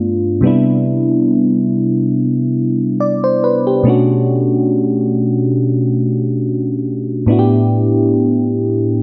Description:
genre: R&B.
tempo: 70 BPM.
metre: 4/4.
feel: swing 54% on 16ths.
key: unclear.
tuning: A4 = 440 Hz.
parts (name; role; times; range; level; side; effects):
mellow FM electric piano; solo; 0.0-9.0 s; G2 to D5; -15 LUFS; equal; chorus.
room: light reverb.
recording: dark, warm production.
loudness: -15 LUFS.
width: mono.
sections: 0.4-9.0 A section.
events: none.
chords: 0.4 Cmaj7; 3.9 Bm9; 7.3 A9sus4.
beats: | 0.44 1.29 2.15 3.01 | 3.87 4.72 5.58 6.44 | 7.29 8.15 9.01.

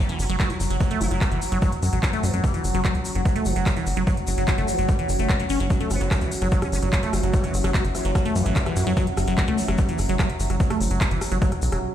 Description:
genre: psychedelic trance.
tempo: 147 BPM.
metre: 4/4.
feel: straight.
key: F# phrygian.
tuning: A4 = 440 Hz.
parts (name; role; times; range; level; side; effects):
overtone-sweeping drone; sustained chords; 0.0-11.8 s; F#3; -30 LUFS; equal; chorus, built-in reverb, sidechain pumping.
liquid acid bass; riff; 0.0-11.8 s; E3 to C#4; -27 LUFS; moving between left 5 dB and right 5 dB; phaser, auto-pan, sidechain pumping, ping-pong delay.
warbly tape-like pad; texture; 0.0-11.8 s; C#4 to F#5; -35 LUFS; right 1 dB; chorus, built-in reverb, sidechain pumping.
vowel-sweep wobble bass; second line; 0.1-1.2, 5.9-8.9 s; E3 to E4; -38 LUFS; right 2 dB; chorus, sidechain pumping, high-pass filter, ping-pong delay.
techno drum kit; drums; 0.1-11.8 s; handclaps, hi-hat, rim click; -31 LUFS; equal; studio reverb.
egg shaker; percussion; 0.1-11.8 s; none; -38 LUFS; left 5 dB; none.
tight sequencer bass; bass; 0.2-11.8 s; E1 to F#2; -24 LUFS; equal; none.
electronic kick drum; drums; 0.4-11.5 s; none; -22 LUFS; equal; studio reverb.
room: little or no reverb.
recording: played on a big sound system in a bare room, stone room reverb.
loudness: -20 LUFS.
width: side -11 dB against mid.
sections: 0.0-11.9 A section.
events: fade-in on ambient pad 0.0-11.9.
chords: 0.0 F#5.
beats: 0.40 | 0.81 1.21 1.62 2.03 | 2.44 2.85 3.25 3.66 | 4.07 4.48 4.89 5.29 | 5.70 6.11 6.52 6.93 | 7.34 7.74 8.15 8.56 | 8.97 9.38 9.79 10.19 | 10.60 11.01 11.42 11.83.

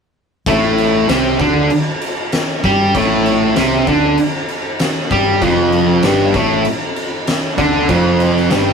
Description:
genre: blues rock power trio and southern rock.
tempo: 97 BPM.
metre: 4/4.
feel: straight.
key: A minor.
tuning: A4 = 440 Hz.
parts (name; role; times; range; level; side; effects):
fuzz guitar; riff; 0.5-8.7 s; F2 to G4; -13 LUFS; equal; distortion.
hollow-body short-scale fingered electric bass; bass; 0.5-8.7 s; F1 to G2; -23 LUFS; equal; none.
oversized low-tuned drum kit; drums; 0.5-8.7 s; crash cymbal, kick drum, snare drum; -19 LUFS; equal; none.
room: wet studio reverb, RT60 0.7 s.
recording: rough rehearsal-room recording.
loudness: -12 LUFS.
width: side -6 dB against mid.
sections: 0.5-8.7 A section.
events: none.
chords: 0.5 Am; 5.4 F69.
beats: | 0.46 1.08 1.70 2.32 | 2.94 3.56 4.17 4.79 | 5.41 6.03 6.65 7.27 | 7.88 8.50.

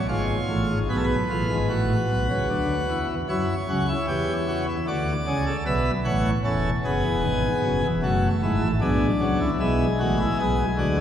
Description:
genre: classical, baroque-style 4-part fugue for pipe organ.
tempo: 76 BPM.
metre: 4/4.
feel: straight.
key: unclear.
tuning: A4 = 442 Hz.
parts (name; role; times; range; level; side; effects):
pipe organ, plenum; solo; 0.0-11.0 s; E1 to F#5; -21 LUFS; equal; none.
room: wet church reverb, RT60 2.9 s.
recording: heard from further back in the room.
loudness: -21 LUFS.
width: side -9 dB against mid.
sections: 0.1-11.0 A section.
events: none.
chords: 0.1 C#7/G#; 1.7 F#m/A; 3.3 F#5; 4.9 Bm; 6.5 A/E; 8.0 D/F#; 9.6 G#dim.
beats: | 0.10 0.90 1.70 2.50 | 3.29 4.08 4.88 5.66 | 6.45 7.24 8.03 8.82 | 9.61 10.40.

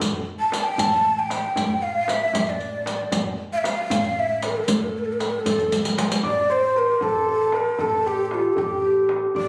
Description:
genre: Persian modal ensemble.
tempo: 77 BPM (dotted quarters).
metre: 6/8.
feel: straight.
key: A dastgah shur.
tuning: A4 = 439 Hz.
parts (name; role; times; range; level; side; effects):
breathy mellow ney; melody; 0.0-9.5 s; F4 to A5; -25 LUFS; equal; none.
upright bass; bass; 0.0-9.5 s; A1 to A2; -34 LUFS; equal; none.
riq; percussion; 0.0-6.2 s; none; -29 LUFS; equal; none.
tombak; percussion; 0.0-9.5 s; none; -35 LUFS; equal; none.
santur; second line; 6.2-9.5 s; G4 to D5; -24 LUFS; equal; none.
room: light reverb.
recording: recorded on a phone in the room, club reverb.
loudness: -22 LUFS.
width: mono.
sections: 0.0-6.2 A section; 6.2-9.5 B section.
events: drum fill 5.7-6.2.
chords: none.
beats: | 0.02 0.79 | 1.57 2.35 | 3.13 3.91 | 4.68 5.46 | 6.24 7.02 | 7.80 8.58 | 9.36.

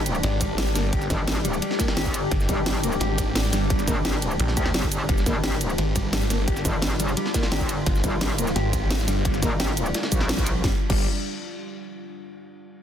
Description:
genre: dark technical drum and bass.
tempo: 173 BPM.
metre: 4/4.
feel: straight.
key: G phrygian.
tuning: A4 = 440 Hz.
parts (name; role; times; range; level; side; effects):
deep dark ambient pad; sustained chords; 0.0-10.8 s; G3 to G4; -31 LUFS; left 2 dB; chorus, built-in reverb, sidechain pumping.
metallic wobble bass; bass; 0.0-10.6 s; G1 to D2; -26 LUFS; equal; chorus.
crunchy breakbeat drum kit; drums; 0.1-10.6 s; ride cymbal, snare drum; -36 LUFS; equal; high-pass filter on cymbals, studio reverb, high-pass filter on snare, high-pass filter on room.
drum and bass drum kit; drums; 0.1-11.0 s; crash cymbal, hi-hat, ride cymbal, shaker, snare drum; -29 LUFS; equal; studio reverb.
snarling distorted saw bass; bass; 0.2-11.1 s; G1 to Bb1; -25 LUFS; equal; distortion, tube saturation, sidechain pumping.
mellow electric guitar; arpeggios; 0.4-11.1 s; G3 to G4; -30 LUFS; equal; sidechain pumping, tape echo.
electronic kick drum; drums; 0.4-11.0 s; none; -26 LUFS; equal; overdrive, studio reverb.
room: light reverb, digital ambience.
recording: dense, heavily limited modern master.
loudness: -21 LUFS.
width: side -9 dB against mid.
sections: 0.0-10.6 A section; 10.6-12.0 B section.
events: drop 0.0-10.6; band accent 10.3.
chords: 0.0 G5.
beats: 0.23 0.58 | 0.93 1.27 1.62 1.97 | 2.31 2.66 3.01 3.35 | 3.70 4.05 4.40 4.74 | 5.09 5.44 5.78 6.13 | 6.48 6.82 7.17 7.52 | 7.86 8.21 8.56 8.90 | 9.25 9.60 9.95 10.29 | 10.64 10.98.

